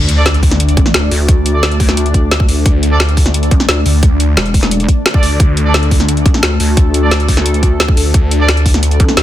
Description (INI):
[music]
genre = dark technical drum and bass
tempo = 175 BPM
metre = 4/4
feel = straight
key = unclear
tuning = A4 = 440 Hz
[part]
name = sweeping resonant pad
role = sustained chords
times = 0.0-9.2 s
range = A3 to D5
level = -20 LUFS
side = left 2 dB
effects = chorus, sidechain pumping
[part]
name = phased detuned saw bass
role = bass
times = 0.0-9.0 s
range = D2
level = -12 LUFS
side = equal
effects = phaser
[part]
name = sub drop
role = sound effects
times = 0.0-1.3 s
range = none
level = -23 LUFS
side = equal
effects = none
[part]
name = drum and bass drum kit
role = drums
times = 0.1-9.2 s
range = hi-hat, snare drum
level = -15 LUFS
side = equal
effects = none
[part]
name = clear brass ensemble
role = stabs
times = 0.2-3.0, 5.1-8.5 s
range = D4 to D5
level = -21 LUFS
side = right 3 dB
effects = tape echo
[part]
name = electronic kick drum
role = drums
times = 0.4-9.1 s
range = none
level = -11 LUFS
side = equal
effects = overdrive
[part]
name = pulsing pluck wobble bass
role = bass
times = 0.8-9.2 s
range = E1 to D2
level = -14 LUFS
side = equal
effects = chorus, tube saturation
[sound]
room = digital ambience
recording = dense, heavily limited modern master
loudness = -9 LUFS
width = side -13 dB against mid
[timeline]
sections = 0.0-9.2 A section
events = impact 0.0-1.3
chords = 0.0 D5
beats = 0.26 0.60 0.94 | 1.28 1.63 1.97 2.31 | 2.66 3.00 3.34 3.69 | 4.03 4.37 4.71 5.06 | 5.40 5.74 6.08 6.43 | 6.77 7.11 7.46 7.80 | 8.14 8.48 8.83 9.17